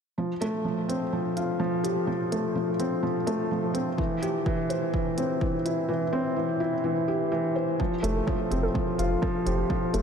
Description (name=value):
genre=piano and strings electronica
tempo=126 BPM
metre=4/4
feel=straight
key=F major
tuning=A4 = 440 Hz
part: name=felt-muted upright piano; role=riff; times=0.2-10.0 s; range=E3 to C5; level=-25 LUFS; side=equal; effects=ping-pong delay
part: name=electronic hi-hat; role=drums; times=0.4-10.0 s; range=none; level=-42 LUFS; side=right 1 dB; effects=overdrive
part: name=electronic kick drum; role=drums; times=4.0-9.8 s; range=none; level=-30 LUFS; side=equal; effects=overdrive
part: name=warbly dusty pluck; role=arpeggios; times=7.8-10.0 s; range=F4 to C5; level=-35 LUFS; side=right 1 dB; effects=chorus, sidechain pumping, ping-pong delay
part: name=warm sub bass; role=bass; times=8.0-10.0 s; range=F1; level=-28 LUFS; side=equal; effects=sidechain pumping
room=wet huge ambient reverb, RT60 8.0 s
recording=dreamy mix soaked in reverb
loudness=-25 LUFS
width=side -7 dB against mid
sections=0.2-7.8 A section; 7.8-10.0 B section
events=none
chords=0.2 Fadd9; 4.0 C; 7.8 Fadd9